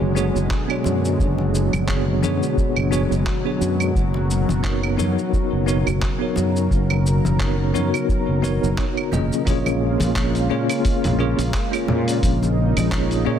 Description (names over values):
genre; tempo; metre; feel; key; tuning
sunset chillout; 87 BPM; 4/4; swing 56% on 16ths; unclear; A4 = 439 Hz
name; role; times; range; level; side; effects
bell-like tine electric piano; accompaniment; 0.0-13.4 s; A#3 to D#5; -24 LUFS; moving between left 5 dB and right 4 dB; fast stereo tremolo, auto-pan, tape echo
lush unison pad; sustained chords; 0.0-13.4 s; B2 to A#4; -25 LUFS; left 1 dB; chorus
sustaining fretless electric bass; bass; 0.0-13.4 s; F#1 to A#2; -21 LUFS; equal; ensemble chorus
dusty soul sampler-style drum kit; drums; 0.2-13.2 s; cabasa, claves, handclaps, hi-hat; -30 LUFS; right 2 dB; soft clipping on snare
electronic kick drum; drums; 0.5-13.1 s; none; -23 LUFS; equal; overdrive
congas; percussion; 0.8-12.9 s; none; -29 LUFS; left 3 dB; none
room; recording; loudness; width
light reverb, digital ambience; dense, heavily limited modern master; -18 LUFS; side -9 dB against mid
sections
0.0-9.5 A section; 9.5-13.4 B section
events
none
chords
0.0 Bm6/F#; 4.0 G#m11/F# (rootless); 9.5 A#m7